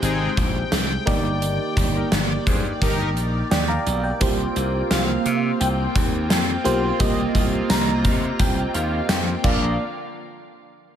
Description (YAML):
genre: 1980s-style pop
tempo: 86 BPM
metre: 4/4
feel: straight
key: unclear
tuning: A4 = 440 Hz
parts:
  - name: FM electric piano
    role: accompaniment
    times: 0.0-9.8 s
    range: Ab3 to Bb5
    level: -25 LUFS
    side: right 2 dB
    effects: chorus, phaser
  - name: phased analog pad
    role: sustained chords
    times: 0.0-9.8 s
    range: C3 to G5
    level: -29 LUFS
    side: right 1 dB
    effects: phaser, chorus
  - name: analog synth brass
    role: stabs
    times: 0.0-3.1, 9.4-9.8 s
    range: F3 to C5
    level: -30 LUFS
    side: left 2 dB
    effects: chorus
  - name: glassy slap bass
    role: bass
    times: 0.0-9.8 s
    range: G1 to C3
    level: -25 LUFS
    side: equal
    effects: none
  - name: gated 80s drum kit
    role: drums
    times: 0.0-9.6 s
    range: crash cymbal, hi-hat, kick drum, snare drum, tambourine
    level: -22 LUFS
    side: equal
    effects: gated reverb
  - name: shimmering bell with halo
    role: second line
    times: 4.2-9.8 s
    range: F5 to Bb5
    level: -30 LUFS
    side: left 2 dB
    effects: ensemble chorus, digital delay
room: light reverb, small room ambience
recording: none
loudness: -19 LUFS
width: side -9 dB against mid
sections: 0.0-9.8 A section; 9.8-11.0 B section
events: none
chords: 0.0 Abmaj7; 1.1 Ebmaj7/G; 4.2 C7sus4; 9.4 Bb; 9.8 N.C.